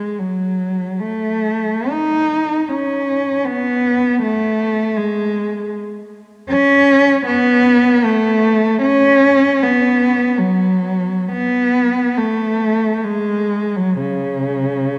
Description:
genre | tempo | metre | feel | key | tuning
classical, free, expressive piece for unaccompanied cello | free time | none | none | unclear | A4 = 440 Hz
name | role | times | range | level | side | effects
warm cello | solo | 0.0-15.0 s | C#3 to D#4 | -16 LUFS | equal | none
room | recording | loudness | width
wet church reverb, RT60 3.1 s | dark, warm production | -16 LUFS | mono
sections
0.0-15.0 A section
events
none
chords
none

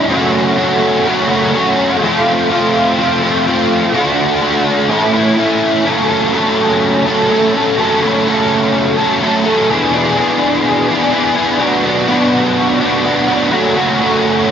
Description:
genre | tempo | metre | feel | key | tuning
rock | 125 BPM | 4/4 | straight | unclear | A4 = 440 Hz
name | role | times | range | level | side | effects
biting overdriven guitar | solo | 0.0-14.5 s | E2 to A4 | -11 LUFS | equal | analog chorus, tape echo
room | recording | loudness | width
moderate scoring stage reverb, RT60 1.9 s, digital ambience | nothing above 7.5 kHz | -11 LUFS | side -8 dB against mid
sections
0.0-5.9 A section; 5.9-14.5 B section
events
none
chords
0.1 F#m; 2.0 F; 3.9 D; 4.9 A; 5.9 F#m; 9.7 E5; 11.6 Bm; 13.5 F#m

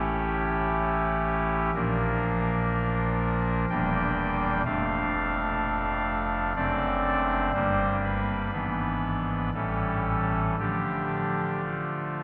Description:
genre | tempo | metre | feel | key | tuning
classical, chorale-style piece for pipe organ | 61 BPM | 3/4 | uneven beats, rubato | D minor | A4 = 440 Hz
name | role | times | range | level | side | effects
pipe organ, soft reed | solo | 0.0-12.2 s | E1 to G5 | -27 LUFS | equal | none
room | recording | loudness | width
wet cathedral reverb, RT60 4.4 s | none | -27 LUFS | mono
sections
0.0-12.2 A section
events
none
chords
0.0 A7; 1.7 Bb; 3.7 Em7b5; 4.6 Dm/F; 6.6 D7/F#; 7.5 Gm; 8.5 E7/G#; 9.5 A7; 10.6 Dm

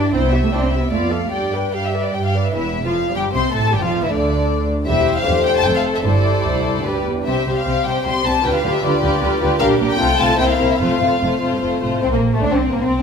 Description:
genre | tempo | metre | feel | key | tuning
quick classical-period movement for string orchestra | 144-159 BPM | 3/4 | rubato | C major, F major from 9.6 s | A4 = 437 Hz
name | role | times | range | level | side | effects
warm symphonic violin section | melody | 0.0-13.0 s | A3 to C6 | -22 LUFS | left 4 dB | none
warm symphonic violin section | second line | 0.0-13.0 s | A3 to G5 | -21 LUFS | left 4 dB | none
dark chamber viola section | accompaniment | 0.0-12.9 s | D3 to B4 | -22 LUFS | right 2 dB | none
warm symphonic cello section | bass | 0.0-13.0 s | C2 to D4 | -24 LUFS | right 2 dB | none
warm symphonic double bass section | bass | 0.0-13.0 s | E1 to G2 | -23 LUFS | right 2 dB | none
room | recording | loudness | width
wet recital hall reverb, RT60 1.4 s | minimal, uncompressed stereo recording | -15 LUFS | side -6 dB against mid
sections
0.0-2.6 A section; 2.6-12.0 B section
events
none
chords
0.1 C; 0.9 Dm/F; 1.3 G; 2.6 C/E; 3.7 G5; 4.9 C/E; 5.7 F; 6.1 Gsus4; 6.9 G; 7.3 C5; 8.4 G7/D; 9.6 Gm/Bb; 10.0 F/C; 10.4 C7; 10.8 F; 12.0 Bbmaj9

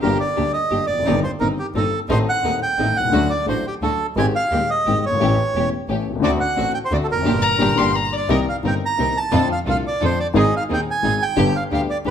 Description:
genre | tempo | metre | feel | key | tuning
tango | 174 BPM | 3/4 | rubato | G harmonic minor, C minor from 8.3 s | A4 = 441 Hz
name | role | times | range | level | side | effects
bandoneon | melody | 0.0-12.1 s | G4 to Bb5 | -21 LUFS | right 2 dB | none
dark baby grand piano | accompaniment | 0.0-12.1 s | Eb1 to A4 | -22 LUFS | left 5 dB | none
warm studio string section | stabs | 0.0-12.1 s | Ab3 to Bb4 | -27 LUFS | right 2 dB | none
clear double bass | bass | 0.0-12.1 s | E1 to F2 | -24 LUFS | right 2 dB | none
warm violin | second line | 7.4-8.3 s | D5 to C6 | -21 LUFS | left 6 dB | none
room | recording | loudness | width
moderate large studio reverb, RT60 1.4 s | none | -17 LUFS | side -8 dB against mid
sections
0.0-8.3 A section; 8.3-12.1 B section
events
band accent 7.3-8.3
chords
0.0 Gm; 1.1 Cm7/G; 2.1 Adim; 3.1 D; 4.2 Abmaj7; 5.2 A7; 6.2 D7; 7.3 Gm; 8.3 Cm7; 9.3 F6; 10.4 Ab; 11.4 G

